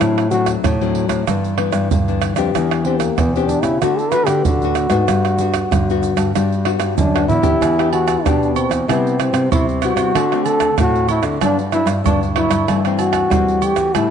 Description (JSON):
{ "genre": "samba and choro", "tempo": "95 BPM", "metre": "4/4", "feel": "straight", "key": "G major", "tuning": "A4 = 439 Hz", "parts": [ { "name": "breathy trombone", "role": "melody", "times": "0.0-14.1 s", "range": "Bb3 to B4", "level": "-19 LUFS", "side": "equal", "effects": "none" }, { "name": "nylon-string guitar", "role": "accompaniment", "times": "0.0-14.1 s", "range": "G2 to G4", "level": "-22 LUFS", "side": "left 13 dB", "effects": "none" }, { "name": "nylon-string guitar", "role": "bass", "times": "0.0-14.1 s", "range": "E2 to G3", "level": "-20 LUFS", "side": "equal", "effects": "none" }, { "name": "tube shaker, surdo, pandeiro, tamborim and agogo bells", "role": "percussion", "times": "0.0-14.1 s", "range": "none", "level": "-20 LUFS", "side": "right 6 dB", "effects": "none" } ], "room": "moderate plate reverb, RT60 3.4 s", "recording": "1960s-style stereo with parts hard left and right, nothing above 10.3 kHz", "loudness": "-14 LUFS", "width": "side -8 dB against mid", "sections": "0.0-7.6 A section; 7.6-14.1 B section", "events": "trombone solo 0.0-7.6; drum fill 7.1-7.6", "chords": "0.0 D7/A; 1.3 G6; 2.5 Em7; 3.8 D; 5.1 Gmaj7; 7.6 Em7; 8.9 Cmaj7; 10.2 D7; 11.4 Gmaj7; 12.7 C6/G" }